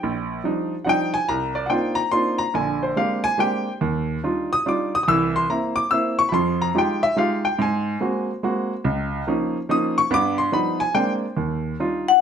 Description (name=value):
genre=jazz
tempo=143 BPM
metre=3/4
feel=swing 66% on 8ths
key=C minor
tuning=A4 = 440 Hz
part: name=clear baby grand piano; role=accompaniment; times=0.0-12.1 s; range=Bb1 to E6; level=-20 LUFS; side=right 1 dB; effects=none
part: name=vibraphone with medium hard mallets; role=melody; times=12.1-12.2 s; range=Gb5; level=-12 LUFS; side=left 13 dB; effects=none
room=moderate studio reverb, RT60 0.8 s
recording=none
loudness=-20 LUFS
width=side -7 dB against mid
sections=0.0-1.3 A section; 1.3-11.4 A section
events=none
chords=0.0 Ebmaj9; 1.3 Cm11; 2.5 Bb13; 3.8 Ebmaj9; 5.1 C7; 6.3 Fm9; 7.6 Ab9; 8.8 Db69; 10.1 G7b13; 11.0 Bb9; 11.4 Ebmaj9